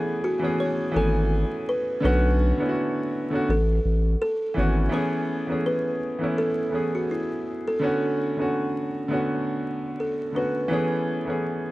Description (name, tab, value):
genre	lo-fi hip hop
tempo	83 BPM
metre	4/4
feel	swing 56% on 16ths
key	A major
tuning	A4 = 441 Hz
part	buzzing kalimba	melody	0.0-10.7 s	E4 to C#5	-28 LUFS	equal	low-pass filter
part	clear upright piano	accompaniment	0.0-11.7 s	D3 to G#5	-25 LUFS	equal	cassette tape, low-pass filter
part	saturated sub bass	bass	1.0-4.9 s	G#1 to B1	-22 LUFS	equal	none
room	light reverb, small room ambience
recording	dark, warm production, vinyl crackle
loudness	-22 LUFS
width	side -18 dB against mid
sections	0.0-4.9 A section; 4.9-11.7 B section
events	none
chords	0.0 Amaj9; 2.0 Bm7; 3.5 A6; 4.9 Amaj9; 7.8 Bm7; 10.7 Amaj9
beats	0.59 1.31 | 2.03 2.75 3.48 4.20 | 4.92 5.65 6.37 7.09 | 7.82 8.54 9.26 9.98 | 10.71 11.43